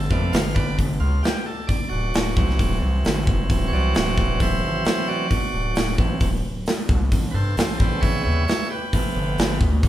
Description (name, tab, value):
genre	blues rock power trio and southern rock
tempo	133 BPM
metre	4/4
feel	straight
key	D mixolydian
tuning	A4 = 444 Hz
part	bright tonewheel organ	sustained chords	0.0-9.6 s	C#3 to F5	-26 LUFS	right 2 dB	overdrive, stopped rotary speaker
part	gritty driven synth bass	bass	0.0-9.9 s	D1 to G2	-23 LUFS	equal	distortion
part	big rock drum kit	drums	0.1-9.9 s	hi-hat, kick drum, snare drum	-22 LUFS	equal	none
room	moderate large studio reverb, RT60 1.4 s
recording	band playing live in one room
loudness	-19 LUFS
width	side -13 dB against mid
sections	0.0-9.9 A section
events	tonewheel organ solo 0.0-9.9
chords	0.0 G7; 1.7 D7; 7.1 A7; 8.9 G7